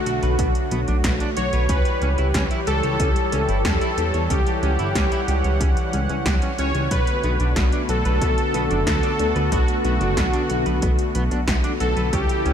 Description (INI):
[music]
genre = synthwave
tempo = 92 BPM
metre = 4/4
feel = straight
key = B minor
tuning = A4 = 439 Hz
[part]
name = soft supersaw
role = melody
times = 0.0-12.5 s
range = F#4 to C#5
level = -25 LUFS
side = equal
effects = diffuse ambient delay
[part]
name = warm analog pad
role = sustained chords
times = 0.0-12.5 s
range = C#3 to F#5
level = -26 LUFS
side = left 1 dB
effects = chorus, tremolo
[part]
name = semi-hollow electric guitar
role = riff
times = 0.1-12.5 s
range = B3 to C#5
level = -32 LUFS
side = right 4 dB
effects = analog chorus, diffuse ambient delay
[part]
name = chorused synth bass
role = bass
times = 0.1-12.5 s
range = F#1 to E2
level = -22 LUFS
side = equal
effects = tube saturation
[part]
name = 80s electronic pad drums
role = drums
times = 0.1-12.5 s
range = hi-hat, snare drum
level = -30 LUFS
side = equal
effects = none
[part]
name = electronic kick drum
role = drums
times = 0.4-12.3 s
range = none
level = -24 LUFS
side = equal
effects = none
[sound]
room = moderate huge ambient reverb, RT60 8.5 s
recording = dreamy mix soaked in reverb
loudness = -18 LUFS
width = side -8 dB against mid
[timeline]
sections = 0.0-12.5 A section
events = none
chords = 0.0 Bm7; 1.7 C#dim; 6.9 Bm7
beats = 0.39 1.04 | 1.70 2.35 3.00 3.65 | 4.30 4.96 5.61 6.26 | 6.91 7.57 8.22 8.87 | 9.52 10.17 10.82 11.48 | 12.13